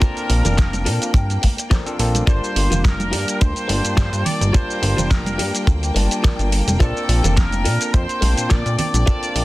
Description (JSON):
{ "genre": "nu-disco, nu disco", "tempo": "106 BPM", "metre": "4/4", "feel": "swing 54% on 16ths", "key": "unclear", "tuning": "A4 = 441 Hz", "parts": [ { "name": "bright trumpet section", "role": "melody", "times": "0.0-9.4 s", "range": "A4 to D5", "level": "-26 LUFS", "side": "equal", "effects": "vintage 12-bit sampler grit, tape echo" }, { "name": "overdriven tine electric piano", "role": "accompaniment", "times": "0.0-9.4 s", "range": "G3 to A5", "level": "-26 LUFS", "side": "equal", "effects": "sidechain pumping" }, { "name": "clear symphonic string section", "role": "sustained chords", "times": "0.0-9.4 s", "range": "Bb3 to G5", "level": "-31 LUFS", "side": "left 2 dB", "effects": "sidechain pumping" }, { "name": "direct-recorded clean electric guitar", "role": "riff", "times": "0.0-9.3 s", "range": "F4 to A5", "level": "-29 LUFS", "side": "left 2 dB", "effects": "lush chorus" }, { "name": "kick drum", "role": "drums", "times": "0.0-9.2 s", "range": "none", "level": "-16 LUFS", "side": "equal", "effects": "soft clipping on snare" }, { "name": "pop drum kit", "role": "drums", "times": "0.0-9.4 s", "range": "hi-hat, shaker, snare drum", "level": "-25 LUFS", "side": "equal", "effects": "none" }, { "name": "chorused synth bass", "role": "bass", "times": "0.3-9.4 s", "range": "F1 to Bb2", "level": "-19 LUFS", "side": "equal", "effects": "none" }, { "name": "congas", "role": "percussion", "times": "0.5-9.0 s", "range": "none", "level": "-28 LUFS", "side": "right 3 dB", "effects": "none" } ], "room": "small room ambience", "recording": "dense, heavily limited modern master", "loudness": "-16 LUFS", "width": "side -18 dB against mid", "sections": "0.0-9.4 A section", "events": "clean electric guitar fill 0.6-2.3", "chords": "0.0 Bbmaj7" }